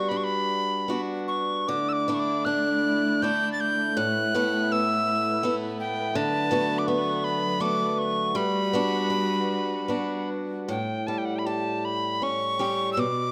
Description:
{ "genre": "celtic folk, Celtic slow air", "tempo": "75-85 BPM", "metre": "3/4", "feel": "rubato", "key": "A mixolydian", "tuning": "A4 = 439 Hz", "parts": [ { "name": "bright reedy wooden whistle", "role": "melody", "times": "0.0-13.3 s", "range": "F#5 to A6", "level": "-29 LUFS", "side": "equal", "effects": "none" }, { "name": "picked swing-style acoustic guitar", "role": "accompaniment", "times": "0.0-13.3 s", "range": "A2 to G4", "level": "-29 LUFS", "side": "equal", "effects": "none" }, { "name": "dark studio string section", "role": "sustained chords", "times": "1.7-10.7 s", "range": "F#3 to D5", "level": "-36 LUFS", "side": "equal", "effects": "none" } ], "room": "light reverb", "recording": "close, detailed microphones", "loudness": "-26 LUFS", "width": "mono", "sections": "0.0-10.7 A section; 10.7-13.3 B section", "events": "none", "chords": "0.0 Gmaj7; 1.7 Dsus2; 4.0 Asus2; 6.2 D6; 8.4 Gmaj7; 10.7 A7", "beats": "0.10 0.89 | 1.68 2.46 3.23 | 3.98 4.72 5.44 | 6.16 6.87 7.60 | 8.35 9.11 9.89 | 10.68 11.46 12.22 | 12.99" }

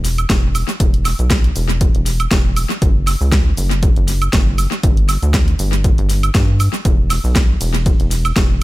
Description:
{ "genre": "deep house", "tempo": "119 BPM", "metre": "4/4", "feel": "swing 55% on 16ths", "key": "E dorian", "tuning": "A4 = 440 Hz", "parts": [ { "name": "rubbery square bass", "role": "bass", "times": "0.0-8.6 s", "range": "E1 to G2", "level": "-17 LUFS", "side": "equal", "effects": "none" }, { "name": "deep house drum kit", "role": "drums", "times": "0.0-8.5 s", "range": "hi-hat, ride cymbal, shaker, snare drum, woodblock", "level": "-20 LUFS", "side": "right 1 dB", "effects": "tape echo" }, { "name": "electronic kick drum", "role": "drums", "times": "0.3-8.5 s", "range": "none", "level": "-15 LUFS", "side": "equal", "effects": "none" } ], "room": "digital ambience", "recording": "echo-heavy mix", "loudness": "-13 LUFS", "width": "side -18 dB against mid", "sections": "0.0-8.6 A section", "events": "none", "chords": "none", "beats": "0.30 | 0.80 1.30 1.81 2.31 | 2.82 3.32 3.83 4.33 | 4.83 5.34 5.84 6.35 | 6.85 7.36 7.86 8.36" }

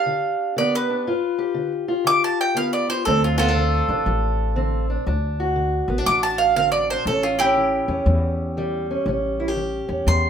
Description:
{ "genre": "blues", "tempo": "120 BPM", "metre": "4/4", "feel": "swing 64% on 8ths", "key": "unclear", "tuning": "A4 = 440 Hz", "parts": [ { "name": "bowl-back mandolin", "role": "melody", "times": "0.0-10.3 s", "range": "E4 to D6", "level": "-21 LUFS", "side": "right 2 dB", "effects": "none" }, { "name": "fingerpicked steel-string acoustic guitar", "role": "accompaniment", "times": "0.0-10.3 s", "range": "D2 to G4", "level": "-24 LUFS", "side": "left 1 dB", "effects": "none" }, { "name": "upright bass", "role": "bass", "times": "3.1-10.3 s", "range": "A1 to E2", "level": "-23 LUFS", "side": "left 1 dB", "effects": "none" } ], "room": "moderate studio reverb, RT60 0.7 s", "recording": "minimal, uncompressed stereo recording", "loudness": "-19 LUFS", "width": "side -8 dB against mid", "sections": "0.0-10.3 A section", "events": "none", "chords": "0.0 G7; 3.1 D7; 7.1 A7", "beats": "0.07 0.57 | 1.07 1.57 2.07 2.57 | 3.07 3.57 4.07 4.57 | 5.07 5.57 6.06 6.56 | 7.06 7.56 8.06 8.56 | 9.06 9.56 10.06" }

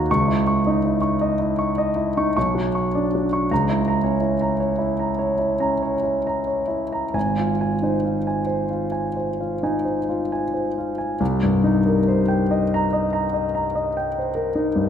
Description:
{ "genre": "classical, impressionist solo piano", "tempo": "43-56 BPM (dotted quarters)", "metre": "9/8", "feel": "rubato", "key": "unclear", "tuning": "A4 = 438 Hz", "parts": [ { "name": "warm concert grand piano", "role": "solo", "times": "0.0-14.9 s", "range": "Ab1 to Db6", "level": "-19 LUFS", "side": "equal", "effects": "none" } ], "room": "wet concert hall reverb, RT60 2.0 s", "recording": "minimal, uncompressed stereo recording", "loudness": "-19 LUFS", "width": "side -8 dB against mid", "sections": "0.0-11.2 A section; 11.2-14.9 B section", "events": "none", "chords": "0.1 Dbmadd9; 2.4 Bmadd9; 3.5 Dbm6; 7.2 Ab6; 11.2 Cm7", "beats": "| 0.09 1.23 2.36 | 3.51 4.61 5.83 | 7.15 8.49 9.84 | 11.20 12.51 13.73" }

